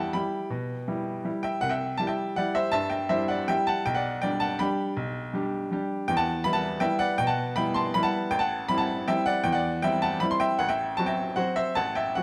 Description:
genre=classical, piano waltz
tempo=160 BPM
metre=3/4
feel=uneven beats, rubato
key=G major, E minor from 6.1 s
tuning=A4 = 439 Hz
part: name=bright upright piano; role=solo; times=0.0-12.2 s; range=A1 to C6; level=-27 LUFS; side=equal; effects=none
room=wet recital hall reverb, RT60 1.4 s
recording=dark, warm production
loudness=-27 LUFS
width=mono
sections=0.0-12.2 A section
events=none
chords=0.0 Em; 1.6 C; 3.9 G/B; 6.1 Em; 8.3 Am7; 10.6 F#dim/A

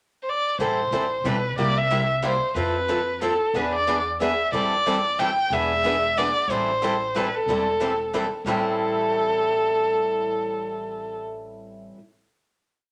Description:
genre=acoustic string swing (jazz manouche)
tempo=183 BPM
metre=3/4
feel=swing 59% on 8ths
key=A minor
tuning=A4 = 441 Hz
part: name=warm violin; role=melody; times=0.2-11.2 s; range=A4 to G5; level=-25 LUFS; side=equal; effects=none
part: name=picked steel-string acoustic guitar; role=accompaniment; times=0.6-12.0 s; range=A2 to A4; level=-34 LUFS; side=equal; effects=none
part: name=picked steel-string acoustic guitar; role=accompaniment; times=0.6-12.0 s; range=A2 to B4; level=-30 LUFS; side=equal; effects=none
part: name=upright bass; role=bass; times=0.6-11.9 s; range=E1 to F2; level=-36 LUFS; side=equal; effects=none
room=wet studio reverb, RT60 0.6 s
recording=none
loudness=-23 LUFS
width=mono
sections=0.0-0.6 pickup bar; 0.6-8.5 A section; 8.5-10.4 final chord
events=none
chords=0.0 N.C.; 0.6 Am9; 1.6 C7; 2.6 Fmaj7; 3.5 E7; 4.5 Am7; 5.5 E7; 6.5 Am7

